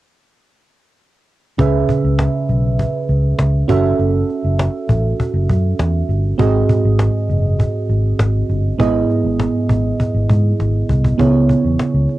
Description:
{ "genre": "1980s-style pop", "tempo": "100 BPM", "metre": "4/4", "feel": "straight", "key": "C# minor", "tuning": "A4 = 441 Hz", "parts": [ { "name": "mellow FM electric piano", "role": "accompaniment", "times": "1.6-12.2 s", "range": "G#2 to E5", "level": "-17 LUFS", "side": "right 3 dB", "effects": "chorus, cassette tape" }, { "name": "vintage muted fingered electric bass", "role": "bass", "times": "1.6-12.1 s", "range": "F#1 to G#2", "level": "-16 LUFS", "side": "equal", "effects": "none" }, { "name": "cajon", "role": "drums", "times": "1.6-12.2 s", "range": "none", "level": "-20 LUFS", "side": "equal", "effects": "cassette tape" } ], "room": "moderate booth ambience, RT60 0.2 s", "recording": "home recording on cassette", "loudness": "-14 LUFS", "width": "side -16 dB against mid", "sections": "1.6-11.2 A section", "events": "drum fill 10.6-11.2", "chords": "1.6 C#m7; 3.7 F#m7; 6.4 G#7; 8.8 Emaj7/G#; 11.2 C#m7" }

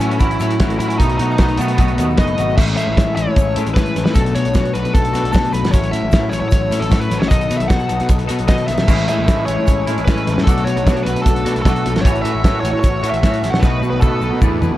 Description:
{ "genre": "indie rock", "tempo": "152 BPM", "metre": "4/4", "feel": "straight", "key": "unclear", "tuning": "A4 = 440 Hz", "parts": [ { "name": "biting lead guitar", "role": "melody", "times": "0.0-14.4 s", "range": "B3 to F#5", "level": "-22 LUFS", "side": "equal", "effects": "overdrive" }, { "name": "airy breathy pad", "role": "sustained chords", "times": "0.0-14.8 s", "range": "A4 to E6", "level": "-32 LUFS", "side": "right 1 dB", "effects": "chorus" }, { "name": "twangy electric guitar", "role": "riff", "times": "0.0-2.6, 8.9-14.8 s", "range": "E2 to F#4", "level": "-24 LUFS", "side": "right 5 dB", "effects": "ensemble chorus" }, { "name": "twelve-string electric guitar", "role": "riff", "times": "0.0-14.8 s", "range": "A2 to C#5", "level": "-22 LUFS", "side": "left 7 dB", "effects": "none" }, { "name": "fuzz picked electric bass", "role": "bass", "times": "0.0-14.8 s", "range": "F#1 to E3", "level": "-20 LUFS", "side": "equal", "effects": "overdrive" }, { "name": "cloth-damped thuddy drum kit", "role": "drums", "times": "0.0-14.7 s", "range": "crash cymbal, hi-hat, kick drum, snare drum, toms", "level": "-17 LUFS", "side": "equal", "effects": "none" }, { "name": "egg shaker", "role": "percussion", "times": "0.0-14.7 s", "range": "none", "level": "-43 LUFS", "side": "right 17 dB", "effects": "none" } ], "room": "studio ambience", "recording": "dark, warm production", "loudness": "-14 LUFS", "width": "side -15 dB against mid", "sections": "0.0-2.6 A section; 2.6-14.8 B section", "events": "drum fill 13.6-14.8", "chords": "0.0 F#m7/A; 1.0 B7; 2.6 Amaj7; 4.2 Bm7; 5.7 F#m7/A; 7.3 B7; 8.9 Amaj7; 10.5 Bm7; 12.0 F#m7/A; 13.6 B7" }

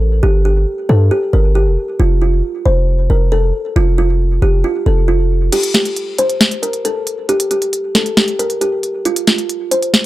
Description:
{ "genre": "hip hop, trap", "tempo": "136 BPM", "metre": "4/4", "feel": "half-time", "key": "unclear", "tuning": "A4 = 440 Hz", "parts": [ { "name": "kalimba", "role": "melody", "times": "0.0-10.1 s", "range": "F4 to C5", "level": "-17 LUFS", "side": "equal", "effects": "tape echo" }, { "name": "hard-hitting 808-style bass", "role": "bass", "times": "0.0-5.5 s", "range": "F1 to G2", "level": "-12 LUFS", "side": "equal", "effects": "none" }, { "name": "trap drum kit", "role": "drums", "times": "5.5-10.0 s", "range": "crash cymbal, hi-hat, snare drum", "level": "-14 LUFS", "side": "equal", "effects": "overdrive" } ], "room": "digital ambience", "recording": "dry, gritty hardware recording", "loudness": "-12 LUFS", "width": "side -16 dB against mid", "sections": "0.0-5.5 A section; 5.5-10.1 B section", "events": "kick muted 5.5-10.1", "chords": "none" }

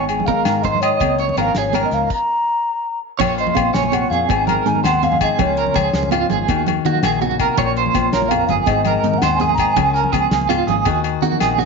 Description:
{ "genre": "highlife guitar band", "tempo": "110 BPM (dotted quarters)", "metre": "12/8", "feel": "straight", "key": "Bb minor", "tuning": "A4 = 440 Hz", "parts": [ { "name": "breathy alto ocarina", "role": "melody", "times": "0.0-10.2 s", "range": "Db5 to Bb5", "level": "-20 LUFS", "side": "left 2 dB", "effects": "none" }, { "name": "fingerpicked steel-string acoustic guitar", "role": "accompaniment", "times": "0.0-11.7 s", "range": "F2 to Ab4", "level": "-23 LUFS", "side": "left 15 dB", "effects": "none" }, { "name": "electric guitar at the edge of break-up", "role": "arpeggios", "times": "0.0-11.7 s", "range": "F4 to Eb5", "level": "-20 LUFS", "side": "right 10 dB", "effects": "tremolo, tape echo" }, { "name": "fingered electric bass", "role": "bass", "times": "0.0-11.7 s", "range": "G1 to Eb3", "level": "-25 LUFS", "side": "left 2 dB", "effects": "none" }, { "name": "damped 70s drum kit", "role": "drums", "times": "0.1-11.7 s", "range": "crash cymbal, hi-hat, kick drum, snare drum", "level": "-25 LUFS", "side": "left 1 dB", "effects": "none" }, { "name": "agogo bells", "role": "percussion", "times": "0.1-11.6 s", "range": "none", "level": "-24 LUFS", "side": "left 17 dB", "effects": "none" }, { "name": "congas", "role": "percussion", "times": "0.2-11.7 s", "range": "none", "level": "-24 LUFS", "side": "right 13 dB", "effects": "none" } ], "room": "moderate plate reverb, RT60 1.0 s, small room ambience", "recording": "1960s-style stereo with parts hard left and right, nothing above 7.5 kHz", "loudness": "-15 LUFS", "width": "side -4 dB against mid", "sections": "0.0-3.2 A section; 3.2-11.7 B section", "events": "stop 2.1-3.2", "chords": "0.0 Ab; 1.0 Db6; 2.1 N.C.; 3.2 Bbm; 4.3 Ab; 5.4 Db6; 6.5 Ebm; 7.6 Bbm; 8.7 Ab; 9.8 Db6; 10.9 Ebm" }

